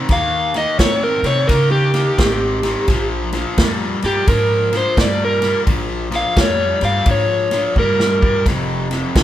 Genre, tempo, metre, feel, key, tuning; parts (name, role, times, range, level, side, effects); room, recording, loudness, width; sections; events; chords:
electric blues shuffle; 86 BPM; 4/4; swing 64% on 8ths; A4 = 442 Hz
cranked stack guitar; riff; 0.0-9.2 s; F2 to C4; -22 LUFS; left 2 dB; overdrive
overdriven semi-hollow guitar; melody; 0.1-8.5 s; G4 to F5; -18 LUFS; equal
upright bass; bass; 0.1-9.2 s; F1 to Db3; -22 LUFS; equal
natural country drum kit; drums; 0.1-9.2 s; kick drum, ride cymbal, snare drum, toms; -19 LUFS; equal
light reverb; band playing live in one room; -14 LUFS; side -12 dB against mid
0.0-9.2 A section
overdriven electric guitar solo 0.0-9.2; drum fill 7.8-8.5
0.0 Eb7; 2.9 Bb5; 8.5 F5